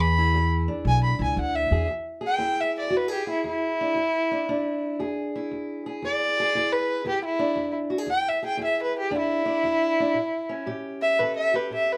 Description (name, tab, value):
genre	blues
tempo	116 BPM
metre	4/4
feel	swing 66% on 8ths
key	E mixolydian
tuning	A4 = 439 Hz
part	dark fiddle	melody	0.0-12.0 s	E4 to B5	-27 LUFS	equal	none
part	fingerpicked steel-string acoustic guitar	accompaniment	0.0-12.0 s	E2 to A4	-32 LUFS	equal	none
part	upright bass	bass	0.0-1.9 s	B1 to E2	-25 LUFS	equal	none
room	moderate small room reverb, RT60 0.6 s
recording	none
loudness	-25 LUFS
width	mono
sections	0.0-1.9 A section; 1.9-12.0 B section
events	fiddle solo 1.9-12.0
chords	0.0 E7; 10.2 A7